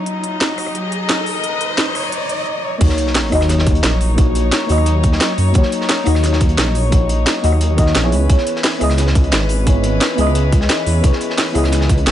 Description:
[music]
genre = liquid drum and bass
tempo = 175 BPM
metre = 4/4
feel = straight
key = Eb phrygian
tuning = A4 = 440 Hz
[part]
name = mellow FM electric piano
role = accompaniment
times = 0.0-12.1 s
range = Bb3 to Eb5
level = -20 LUFS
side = left 2 dB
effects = chorus, phaser, tape echo
[part]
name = warm chamber string section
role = sustained chords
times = 0.0-12.1 s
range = Fb3 to Eb5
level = -23 LUFS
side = left 2 dB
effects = sidechain pumping
[part]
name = riser and sub drop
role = sound effects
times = 0.0-4.2 s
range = none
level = -24 LUFS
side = right 1 dB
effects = none
[part]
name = drum and bass drum kit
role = drums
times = 0.1-12.1 s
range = crash cymbal, hi-hat, rim click, snare drum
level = -20 LUFS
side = right 1 dB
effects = none
[part]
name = dark detuned saw bass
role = bass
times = 2.8-12.1 s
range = Ab1 to Gb2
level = -16 LUFS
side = equal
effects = none
[part]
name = crunchy breakbeat drum kit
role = drums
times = 2.8-12.1 s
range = hi-hat, snare drum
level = -25 LUFS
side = right 1 dB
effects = high-pass filter on hats, high-pass filter on snare, high-pass filter on room
[part]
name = electronic kick drum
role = drums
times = 2.8-12.0 s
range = none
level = -14 LUFS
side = equal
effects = none
[sound]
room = light reverb, small room ambience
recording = nothing above 10.9 kHz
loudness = -13 LUFS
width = side -11 dB against mid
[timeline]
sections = 0.0-2.8 A section; 2.8-12.1 B section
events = build-up 0.0-2.8; riser 0.0-2.5; drop 2.8-12.1; impact 2.8-4.2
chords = 0.0 Ebm7; 8.1 Dbm7

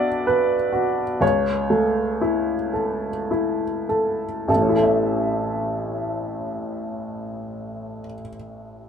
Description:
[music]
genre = classical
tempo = 33-44 BPM (dotted quarters)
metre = 6/8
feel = rubato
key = A major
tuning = A4 = 440 Hz
[part]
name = clear upright piano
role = accompaniment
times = 0.0-8.9 s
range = A1 to E5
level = -21 LUFS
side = equal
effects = none
[sound]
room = moderate studio reverb, RT60 0.9 s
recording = band playing live in one room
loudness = -20 LUFS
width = side -7 dB against mid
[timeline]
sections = 0.0-4.5 A section; 4.5-8.0 B section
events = slowing down 0.0-4.5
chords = 0.0 Bm; 1.2 A/C#; 4.5 A

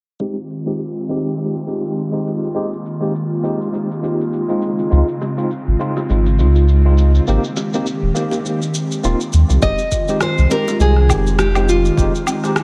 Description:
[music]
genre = sunset chillout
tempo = 102 BPM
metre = 4/4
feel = swing 56% on 16ths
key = F minor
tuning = A4 = 440 Hz
[part]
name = tine electric piano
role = accompaniment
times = 0.2-12.6 s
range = Ab3 to G4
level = -24 LUFS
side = equal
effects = overdrive, low-pass filter, digital delay
[part]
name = airy breathy pad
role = sustained chords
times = 0.2-12.6 s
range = Db3 to G4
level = -25 LUFS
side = equal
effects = chorus
[part]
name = electronic shaker, rim click and woodblock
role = drums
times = 0.2-12.6 s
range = none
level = -27 LUFS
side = equal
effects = none
[part]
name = warm sub bass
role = bass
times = 4.9-12.1 s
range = Eb1 to Eb2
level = -15 LUFS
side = equal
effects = none
[part]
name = bongos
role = percussion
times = 5.2-12.4 s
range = none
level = -31 LUFS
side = equal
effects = none
[part]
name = nylon-string guitar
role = melody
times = 9.6-12.6 s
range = F4 to Eb5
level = -21 LUFS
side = equal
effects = tape echo
[part]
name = electronic kick drum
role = drums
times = 9.6-12.1 s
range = none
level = -22 LUFS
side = equal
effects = none
[sound]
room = light reverb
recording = low-pass filter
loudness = -17 LUFS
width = mono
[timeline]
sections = 0.2-9.6 A section; 9.6-12.6 B section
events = filter sweep on tine electric piano 0.2-9.6; filter sweep 0.2-9.6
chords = 0.2 Fm7; 4.6 Dbmaj7; 7.3 Abmaj7; 9.6 Fm7

